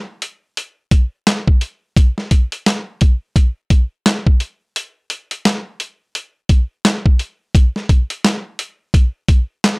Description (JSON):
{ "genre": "hip hop", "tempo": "86 BPM", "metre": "4/4", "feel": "swing 60% on 16ths", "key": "none", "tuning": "none", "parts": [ { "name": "boom bap sampler-style drum kit", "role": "drums", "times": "0.2-9.8 s", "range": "handclaps, hi-hat, kick drum, snare drum", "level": "-12 LUFS", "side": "equal", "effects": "none" } ], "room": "little or no reverb", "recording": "dry, gritty hardware recording", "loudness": "-14 LUFS", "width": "side -34 dB against mid", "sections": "0.0-9.8 A section", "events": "break 4.8-6.2", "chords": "none" }